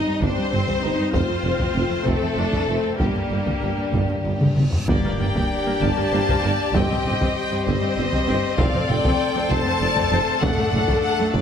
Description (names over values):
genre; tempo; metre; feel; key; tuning
cinematic, epic orchestral film score; 65 BPM (dotted quarters); 6/8; straight; G minor; A4 = 440 Hz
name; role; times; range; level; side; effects
rich symphonic violin section; melody; 0.0-11.4 s; G4 to A5; -26 LUFS; left 4 dB; none
rich symphonic violin section; second line; 0.0-11.4 s; G3 to Eb5; -29 LUFS; left 2 dB; none
rich symphonic viola section; accompaniment; 0.0-11.4 s; A3 to A4; -27 LUFS; left 1 dB; none
dark French horn section; sustained chords; 0.0-11.4 s; G3 to D4; -29 LUFS; left 4 dB; none
rich symphonic cello section; bass; 0.1-11.4 s; F2 to G2; -29 LUFS; right 2 dB; none
mellow tuba; bass; 0.2-11.4 s; F1 to G1; -29 LUFS; right 4 dB; none
rich symphonic double bass section; bass; 0.2-11.4 s; F1 to G1; -29 LUFS; right 3 dB; none
taiko ensemble; drums; 0.2-11.4 s; none; -25 LUFS; equal; none
timpani; percussion; 3.0-5.8 s; G2; -32 LUFS; left 1 dB; none
reverse cymbal and impact; sound effects; 4.4-6.8 s; none; -36 LUFS; equal; none
pipe organ, trumpet; sustained chords; 4.9-11.4 s; A3 to A5; -31 LUFS; left 1 dB; none
room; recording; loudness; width
moderate scoring stage reverb, RT60 1.9 s; none; -19 LUFS; side -8 dB against mid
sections
0.0-4.9 A section; 4.9-11.4 B section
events
timpani fill 3.0-4.9; reverse cymbal 4.4-4.9; drum fill 4.4-4.9; impact 4.9-6.7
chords
0.0 Cm/G; 1.1 F; 3.0 Gm; 6.7 Cm/G; 8.6 F; 10.4 D/F#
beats
0.22 | 1.14 2.06 | 3.00 3.94 | 4.89 5.82 | 6.75 7.67 | 8.59 9.50 | 10.42 11.34